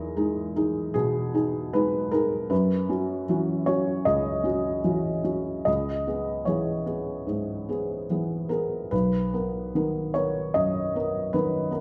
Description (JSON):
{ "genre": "neoclassical minimalist piano", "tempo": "76 BPM", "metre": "4/4", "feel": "rubato", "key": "B major", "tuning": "A4 = 440 Hz", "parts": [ { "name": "felt-muted upright piano", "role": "solo", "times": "0.0-11.8 s", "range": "B1 to D#5", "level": "-26 LUFS", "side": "equal", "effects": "none" } ], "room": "moderate large studio reverb, RT60 1.2 s", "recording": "band playing live in one room", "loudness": "-26 LUFS", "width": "mono", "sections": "0.0-11.8 A section", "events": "none", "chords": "0.0 Emaj7; 2.5 F#7sus4; 5.7 C#m7; 8.9 Bmaj7" }